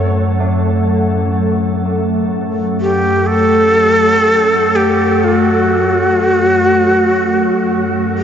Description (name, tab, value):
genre	dark ambient drone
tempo	free time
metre	none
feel	none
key	F# phrygian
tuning	A4 = 440 Hz
part	deep dark ambient pad	sustained chords	0.0-8.2 s	A4 to F#5	-26 LUFS	right 1 dB	chorus, built-in reverb
part	old church bells	arpeggios	0.0-6.2 s	A3	-30 LUFS	right 1 dB	none
part	organ-like drone	drone	0.0-8.2 s	F#2 to A3	-15 LUFS	left 1 dB	ensemble chorus, built-in reverb
part	bronze singing bowl	texture	0.0-8.2 s	none	barely audible	none	none
part	breathy shakuhachi	melody	2.8-8.2 s	F#4 to A4	-13 LUFS	equal	analog delay
room	wet huge ambient reverb, RT60 7.6 s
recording	dreamy mix soaked in reverb, nothing above 7.6 kHz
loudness	-11 LUFS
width	side -8 dB against mid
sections	0.0-8.2 A section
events	fade-out on ambient pad 0.0-8.2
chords	0.0 F#m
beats	free time